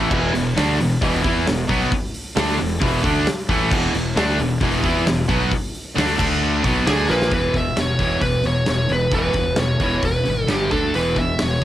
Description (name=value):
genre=hard rock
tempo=133 BPM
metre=4/4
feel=straight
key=unclear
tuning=A4 = 442 Hz
part: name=distorted electric guitar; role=riff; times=0.0-7.3 s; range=E2 to E4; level=-24 LUFS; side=left 1 dB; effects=overdrive
part: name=scooped high-gain guitar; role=riff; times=0.0-11.6 s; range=E2 to E4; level=-25 LUFS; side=left 5 dB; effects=distortion
part: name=sludgy distorted guitar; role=riff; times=0.0-11.6 s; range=E2 to E4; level=-24 LUFS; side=right 6 dB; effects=overdrive
part: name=fuzz fingered electric bass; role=bass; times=0.0-11.6 s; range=E1 to E2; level=-24 LUFS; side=equal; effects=overdrive
part: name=big rock drum kit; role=drums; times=0.1-11.6 s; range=crash cymbal, hi-hat, kick drum, snare drum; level=-24 LUFS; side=equal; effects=cassette tape
part: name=biting lead guitar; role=melody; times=6.9-11.6 s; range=G4 to E5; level=-22 LUFS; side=equal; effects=overdrive, cassette tape
room=little or no reverb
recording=home recording on cassette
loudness=-17 LUFS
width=side -13 dB against mid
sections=0.0-7.3 A section; 7.3-11.6 B section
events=drum fill 7.1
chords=0.0 E5; 6.2 D5; 6.6 A#7b9b13; 7.3 E5; 10.5 G5; 10.7 D5; 10.9 E5